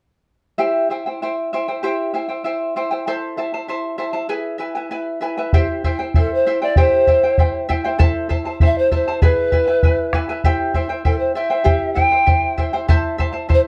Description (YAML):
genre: andean folk, Andean ensemble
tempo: 98 BPM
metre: 2/4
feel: straight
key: unclear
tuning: A4 = 442 Hz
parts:
  - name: charango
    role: accompaniment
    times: 0.6-13.7 s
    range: E4 to A5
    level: -24 LUFS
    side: equal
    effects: none
  - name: bombo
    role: percussion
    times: 5.5-13.6 s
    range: none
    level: -19 LUFS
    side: equal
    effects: none
  - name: polished pan flute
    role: melody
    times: 6.2-13.6 s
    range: A4 to G5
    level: -19 LUFS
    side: equal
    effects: none
room: moderate studio reverb, RT60 0.5 s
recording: none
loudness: -19 LUFS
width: mono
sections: 0.6-5.5 A section; 5.5-13.7 B section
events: none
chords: 0.6 C; 3.1 Am; 4.3 E; 5.5 C; 8.0 Am; 9.2 E; 10.4 C; 12.9 Am